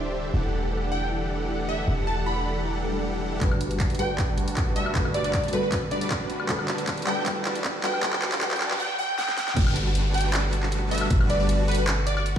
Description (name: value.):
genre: future bass.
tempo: 156 BPM.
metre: 4/4.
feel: half-time.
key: G major.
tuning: A4 = 440 Hz.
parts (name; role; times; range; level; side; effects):
warm studio string section; sustained chords; 0.0-12.4 s; B2 to F#5; -37 LUFS; equal; sidechain pumping, low-pass filter.
supersaw chords; riff; 0.0-11.8 s; D3 to B5; -31 LUFS; right 1 dB; vintage 12-bit sampler grit, sidechain pumping, low-pass filter.
warm 808-style bass; bass; 0.0-12.4 s; D1 to G1; -28 LUFS; equal; sidechain pumping.
soft round pluck; arpeggios; 0.1-3.4 s; E4 to E5; -38 LUFS; left 4 dB; wide subtle chorus, sidechain pumping, dub echo.
plucky unison lead; melody; 0.9-12.2 s; B4 to B5; -30 LUFS; equal; wide subtle chorus, sidechain pumping, dub echo.
swell, riser, noise sweep and downlifter; sound effects; 2.7-12.4 s; none; -37 LUFS; equal; none.
soft round pluck; accompaniment; 3.4-8.8 s; G3 to B4; -34 LUFS; left 3 dB; ensemble chorus, sidechain pumping, dub echo.
electronic kick drum; drums; 3.4-12.4 s; none; -27 LUFS; equal; none.
pop drum kit; drums; 3.4-12.3 s; crash cymbal, handclaps, hi-hat, snare drum, woodblock; -29 LUFS; equal; none.
room: moderate lush hall reverb, RT60 2.0 s, digital ambience.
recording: played on a big sound system in a bare room, stone room reverb, high-pass filter.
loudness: -23 LUFS.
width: side -9 dB against mid.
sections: 0.0-3.4 A section; 3.4-9.6 B section; 9.6-12.4 C section.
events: swell 2.7-3.4; build-up 3.4-9.6; drum fill 3.4-8.8, 9.2-9.6; filter sweep on supersaw synth 3.4-9.6; filter sweep 3.4-9.6; noise sweep 8.0-9.6; drop 9.6-12.4.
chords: 0.3 Em11; 3.4 Gmaj9.